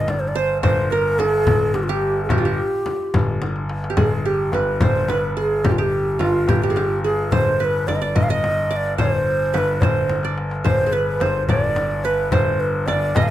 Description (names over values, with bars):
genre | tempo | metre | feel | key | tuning
Arabic maqam ensemble | 72 BPM (dotted quarters) | 6/8 | straight | G maqam bayati, G maqam hijaz from 4.0 s | A4 = 441 Hz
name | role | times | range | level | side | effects
breathy low ney | melody | 0.0-13.3 s | F4 to F5 | -21 LUFS | right 1 dB | none
qanun | second line | 0.0-13.3 s | F4 to Eb5 | -26 LUFS | right 5 dB | none
clear concert grand piano | bass | 0.0-13.3 s | G1 | -23 LUFS | left 1 dB | none
darbuka | percussion | 0.1-13.3 s | none | -25 LUFS | left 2 dB | none
frame drum | percussion | 0.1-13.3 s | none | -25 LUFS | left 2 dB | none
room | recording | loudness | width
light reverb | close, detailed microphones | -17 LUFS | side -13 dB against mid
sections
0.0-4.0 A section; 4.0-13.3 B section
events
drum fill 3.4-4.0, 10.1-10.7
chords
none